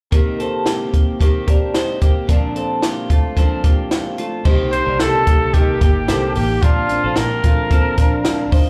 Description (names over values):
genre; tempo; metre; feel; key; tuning
jangly indie pop; 111 BPM; 4/4; straight; C dorian; A4 = 440 Hz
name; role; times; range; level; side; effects
fingerpicked steel-string acoustic guitar; accompaniment; 0.1-8.7 s; Bb2 to G4; -26 LUFS; equal; slapback echo
twelve-string electric guitar; arpeggios; 0.1-8.7 s; A3 to C5; -26 LUFS; equal; slapback echo, delay
compact cocktail drum kit; drums; 0.1-8.6 s; crash cymbal, hi-hat, kick drum, snare drum; -18 LUFS; equal; none
vintage muted fingered electric bass; bass; 4.5-8.4 s; G1 to C3; -24 LUFS; equal; none
clear trumpet; melody; 4.7-8.5 s; F4 to C5; -22 LUFS; equal; slapback echo, delay
room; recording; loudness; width
light reverb, small room ambience; live gig heard through the venue's PA, club reverb; -17 LUFS; mono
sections
0.1-4.5 A section; 4.5-8.7 B section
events
none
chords
0.1 Cm7; 2.3 Bbadd9; 4.5 Cm7; 6.6 Bbadd9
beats
| 0.12 0.66 1.20 1.75 | 2.29 2.83 3.37 3.92 | 4.46 5.00 5.54 6.08 | 6.63 7.17 7.71 8.25